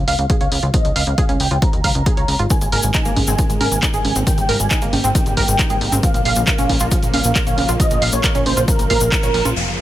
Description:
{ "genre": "uplifting trance", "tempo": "136 BPM", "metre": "4/4", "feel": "straight", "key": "unclear", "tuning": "A4 = 440 Hz", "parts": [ { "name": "plucky analog bass", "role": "bass", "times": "0.0-9.8 s", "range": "F1 to Eb2", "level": "-21 LUFS", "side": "equal", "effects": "sidechain pumping" }, { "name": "supersaw chords", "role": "melody", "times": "0.1-9.8 s", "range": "Bb4 to Bb5", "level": "-22 LUFS", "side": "right 1 dB", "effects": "analog chorus, cassette tape, sidechain pumping, low-pass filter, digital delay" }, { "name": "wide unison pluck", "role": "arpeggios", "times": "0.1-9.5 s", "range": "Eb3 to F5", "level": "-25 LUFS", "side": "right 3 dB", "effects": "sidechain pumping, digital delay" }, { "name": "punchy analog drum machine", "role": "drums", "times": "0.1-9.5 s", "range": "congas, handclaps, hi-hat", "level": "-22 LUFS", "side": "right 1 dB", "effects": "low-pass filter on hats, low-pass filter on snare, low-pass filter on perc" }, { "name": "electronic kick drum", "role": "drums", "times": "0.3-9.2 s", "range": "none", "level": "-18 LUFS", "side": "equal", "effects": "none" }, { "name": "lush unison pad", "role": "sustained chords", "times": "2.5-9.8 s", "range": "C3 to Ab4", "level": "-27 LUFS", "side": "equal", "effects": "chorus, sidechain pumping" }, { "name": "tube shaker", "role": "percussion", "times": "2.5-9.5 s", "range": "none", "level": "-26 LUFS", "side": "left 4 dB", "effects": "none" }, { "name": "downlifter", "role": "sound effects", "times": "9.6-9.8 s", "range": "none", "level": "-21 LUFS", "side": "left 1 dB", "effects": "none" } ], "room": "little or no reverb", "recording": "none", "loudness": "-14 LUFS", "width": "side -13 dB against mid", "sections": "0.0-9.6 A section", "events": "band accent 9.1", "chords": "0.0 Db; 2.5 Abadd9; 6.0 Bbm", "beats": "0.30 | 0.74 1.18 1.62 2.06 | 2.50 2.94 3.39 3.83 | 4.27 4.71 5.15 5.59 | 6.03 6.47 6.92 7.36 | 7.80 8.24 8.68 9.12 | 9.56" }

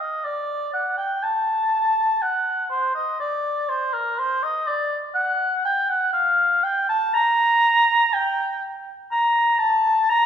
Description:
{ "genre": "classical, baroque-style fantasia for unaccompanied oboe", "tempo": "61 BPM", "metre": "3/4", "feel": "rubato", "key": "G minor", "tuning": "A4 = 442 Hz", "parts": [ { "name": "mellow oboe", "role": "solo", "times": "0.0-10.3 s", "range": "Bb4 to Bb5", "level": "-19 LUFS", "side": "equal", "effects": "none" } ], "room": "wet scoring stage reverb, RT60 1.6 s", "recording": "recorded in a church or concert hall", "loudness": "-19 LUFS", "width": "side -8 dB against mid", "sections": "0.0-10.3 A section", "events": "none", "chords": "none", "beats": "| 0.23 1.23 2.22 | 3.21 4.19 5.16 | 6.14 7.14 8.14 | 9.12 10.10" }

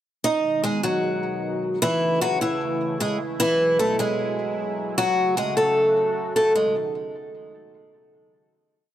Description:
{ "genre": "hip hop", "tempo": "152 BPM", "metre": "4/4", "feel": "half-time", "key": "G# phrygian", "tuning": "A4 = 440 Hz", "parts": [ { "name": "picked acoustic archtop guitar", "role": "melody", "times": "0.2-6.7 s", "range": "E3 to D#5", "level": "-21 LUFS", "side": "equal", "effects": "tape echo" }, { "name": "sweeping resonant pad", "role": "sustained chords", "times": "0.2-6.7 s", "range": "B2 to F#4", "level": "-31 LUFS", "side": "equal", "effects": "chorus" } ], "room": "light reverb, studio reverb", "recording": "dry, gritty hardware recording", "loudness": "-20 LUFS", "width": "side -11 dB against mid", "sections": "0.2-6.6 hook; 6.6-8.1 final chord", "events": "none", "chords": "0.2 G#m; 1.8 A; 3.4 Eadd9; 5.0 F#m; 6.6 G#m", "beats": "| 0.24 0.64 1.03 1.43 | 1.82 2.21 2.61 3.00 | 3.40 3.79 4.19 4.58 | 4.98 5.37 5.77 6.16 | 6.56" }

